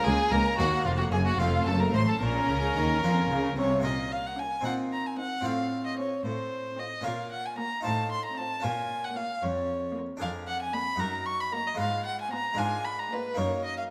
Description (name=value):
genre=classical, baroque-style concerto movement with solo episodes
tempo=75 BPM (dotted quarters)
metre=6/8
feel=straight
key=Bb minor, Eb minor from 10.2 s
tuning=A4 = 442 Hz
part: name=rich symphonic violin section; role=melody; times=0.0-13.3 s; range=Bb4 to C6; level=-37 LUFS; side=equal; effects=none
part: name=warm violin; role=melody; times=0.0-13.8 s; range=F4 to Db6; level=-33 LUFS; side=equal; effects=none
part: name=rich chamber violin section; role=second line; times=0.0-13.3 s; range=Eb4 to C6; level=-41 LUFS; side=equal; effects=none
part: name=harpsichord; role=accompaniment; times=0.0-13.9 s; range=Db2 to C5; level=-37 LUFS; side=equal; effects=none
part: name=rich studio viola section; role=accompaniment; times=0.1-13.3 s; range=A3 to Db4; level=-39 LUFS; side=equal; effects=none
part: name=clear studio cello section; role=bass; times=0.1-13.9 s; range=Db2 to F3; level=-34 LUFS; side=equal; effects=none
part: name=rich chamber double bass section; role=bass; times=0.1-3.8 s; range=F1 to F2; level=-34 LUFS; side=equal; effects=none
room=wet recital hall reverb, RT60 1.5 s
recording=none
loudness=-29 LUFS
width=mono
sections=0.0-3.9 A section; 3.9-13.9 B section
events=none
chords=0.0 Bbm/Db; 0.6 Ebm; 1.4 F; 2.2 Bbm; 4.7 Ab9/Bb (rootless); 5.5 F/A; 7.1 Bbm; 7.8 F7/A; 8.6 Bbm; 10.2 Bb7/F; 11.0 Ebm/Gb; 11.8 Fdim/Ab; 12.6 Bb7/Ab; 13.4 Ebm/Gb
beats=| 0.59 1.40 | 2.21 3.03 | 3.85 4.66 | 5.46 6.25 | 7.05 7.85 | 8.64 9.43 | 10.21 11.01 | 11.80 12.59 | 13.38